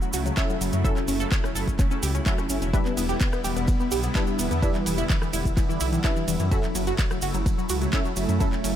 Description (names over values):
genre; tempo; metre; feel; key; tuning
progressive house; 127 BPM; 4/4; straight; unclear; A4 = 440 Hz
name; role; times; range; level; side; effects
lush unison pad; sustained chords; 0.0-8.8 s; C#3 to E4; -31 LUFS; right 1 dB; chorus, phaser, sidechain pumping
tight sequenced synth; arpeggios; 0.0-8.7 s; E3 to A4; -30 LUFS; left 1 dB; chorus, phaser, cassette tape, sidechain pumping, ping-pong delay
wide unison pluck; stabs; 0.0-8.8 s; F#3 to E5; -31 LUFS; left 1 dB; ensemble chorus, sidechain pumping, ping-pong delay
cabasa; percussion; 0.0-8.7 s; none; -35 LUFS; right 3 dB; none
dark detuned saw bass; bass; 0.1-8.8 s; E1 to F#2; -28 LUFS; equal; sidechain pumping
house drum kit; drums; 0.1-8.7 s; handclaps, hi-hat, ride cymbal, rim click; -34 LUFS; right 1 dB; sidechain pumping on hats, sidechain pumping on cymbals
electronic kick drum; drums; 0.4-8.5 s; none; -24 LUFS; equal; none
room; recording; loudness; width
little or no reverb; none; -22 LUFS; side -10 dB against mid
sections
0.0-8.8 A section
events
none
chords
0.0 F#m7; 2.7 Em7; 6.5 F#m7